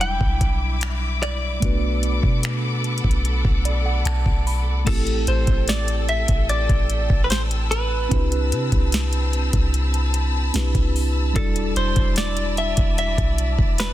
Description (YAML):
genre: contemporary R&B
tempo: 74 BPM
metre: 4/4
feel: straight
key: E minor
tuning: A4 = 440 Hz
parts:
  - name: direct-recorded clean electric guitar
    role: melody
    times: 0.0-13.9 s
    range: A4 to G5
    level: -26 LUFS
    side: equal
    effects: lush chorus, digital delay
  - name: mellow tine electric piano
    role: accompaniment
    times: 0.0-13.9 s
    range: F#3 to B5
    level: -29 LUFS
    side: right 1 dB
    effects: medium stereo tremolo
  - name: bright studio string section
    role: sustained chords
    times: 0.0-13.9 s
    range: C4 to E6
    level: -30 LUFS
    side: left 3 dB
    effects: none
  - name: soft 808-style bass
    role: bass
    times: 0.0-13.9 s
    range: E1 to C3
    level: -22 LUFS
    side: equal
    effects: none
  - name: smooth R&B drum kit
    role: drums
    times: 0.0-13.9 s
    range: crash cymbal, finger snaps, hi-hat, kick drum, snare drum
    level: -22 LUFS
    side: equal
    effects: soft clipping on snare
room: little or no reverb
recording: dense, heavily limited modern master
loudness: -18 LUFS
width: side -14 dB against mid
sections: 0.0-4.9 A section; 4.9-13.9 B section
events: tine electric piano fill 3.2-4.9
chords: 0.0 Em7; 1.6 Bm7; 4.9 Am7; 8.1 Cmaj7; 11.4 Em7